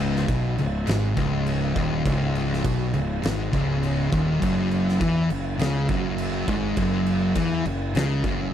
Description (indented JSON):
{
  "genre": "stoner and doom metal",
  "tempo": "102 BPM",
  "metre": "4/4",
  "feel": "straight",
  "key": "C# minor",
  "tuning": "A4 = 440 Hz",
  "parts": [
    { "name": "thick fuzz guitar", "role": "riff", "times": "0.0-8.5 s", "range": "C#2 to E3", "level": "-25 LUFS", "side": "left 5 dB", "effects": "distortion" },
    { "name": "thick fuzz guitar", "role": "riff", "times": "0.0-8.5 s", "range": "C#2 to E3", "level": "-28 LUFS", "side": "right 10 dB", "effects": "distortion" },
    { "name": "fuzz fingered electric bass", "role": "bass", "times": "0.0-8.5 s", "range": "C#1 to E2", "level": "-29 LUFS", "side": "equal", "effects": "overdrive" },
    { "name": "oversized low-tuned drum kit", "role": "drums", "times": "0.2-8.4 s", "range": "crash cymbal, kick drum, snare drum", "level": "-29 LUFS", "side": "right 1 dB", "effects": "none" }
  ],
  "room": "studio ambience",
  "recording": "none",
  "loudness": "-21 LUFS",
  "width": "side -10 dB against mid",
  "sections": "0.0-8.5 A section",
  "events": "none",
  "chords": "0.0 C#5; 4.4 F#5"
}